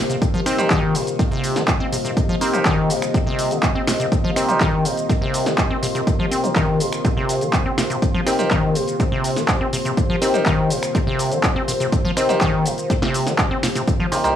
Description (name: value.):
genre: acid house.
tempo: 123 BPM.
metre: 4/4.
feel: straight.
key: C minor.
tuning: A4 = 444 Hz.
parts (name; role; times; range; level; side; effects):
dark analog pad; sustained chords; 0.0-14.4 s; C3 to Eb5; -26 LUFS; left 2 dB; chorus, sidechain pumping.
deep dark ambient pad; texture; 0.0-14.4 s; G4 to C6; -27 LUFS; equal; chorus, built-in reverb, sidechain pumping.
acid bass, square; riff; 0.1-14.4 s; C2 to C4; -22 LUFS; left 1 dB; tube saturation, analog delay.
punchy analog drum machine; drums; 0.1-14.3 s; finger snaps, handclaps, hi-hat, shaker, snare drum; -24 LUFS; equal; none.
electronic kick drum; drums; 0.2-14.0 s; none; -21 LUFS; equal; none.
bell-like tine electric piano; stabs; 0.5-14.3 s; Eb4 to C5; -23 LUFS; right 1 dB; phaser, analog delay.
room: little or no reverb.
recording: dry, gritty hardware recording, studio ambience.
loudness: -17 LUFS.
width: side -10 dB against mid.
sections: 0.0-14.4 A section.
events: none.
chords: 0.0 Cm7.